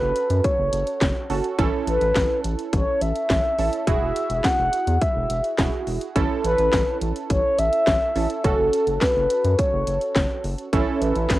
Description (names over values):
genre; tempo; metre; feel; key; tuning
synth-pop; 105 BPM; 4/4; straight; A major; A4 = 441 Hz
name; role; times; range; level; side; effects
mellow horn-like synth lead; melody; 0.0-11.4 s; A4 to F#5; -22 LUFS; left 1 dB; chorus, cassette tape, tape echo
warm analog keys; accompaniment; 0.0-11.4 s; C#4 to A4; -27 LUFS; right 6 dB; chorus, cassette tape
round analog bass; bass; 0.0-11.4 s; E1 to F#2; -25 LUFS; equal; none
house drum kit; drums; 0.2-11.4 s; handclaps, hi-hat, kick drum, snare drum; -24 LUFS; equal; overdrive
room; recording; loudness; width
moderate booth ambience, RT60 0.2 s; home recording on cassette; -19 LUFS; side -16 dB against mid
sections
0.0-11.4 A section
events
none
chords
0.0 F#m; 1.6 A; 3.9 Eadd9; 6.2 A; 8.4 F#m; 10.7 A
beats
0.44 1.01 | 1.59 2.16 2.73 3.30 | 3.87 4.44 5.01 5.59 | 6.16 6.73 7.30 7.87 | 8.44 9.02 9.59 10.16 | 10.73 11.30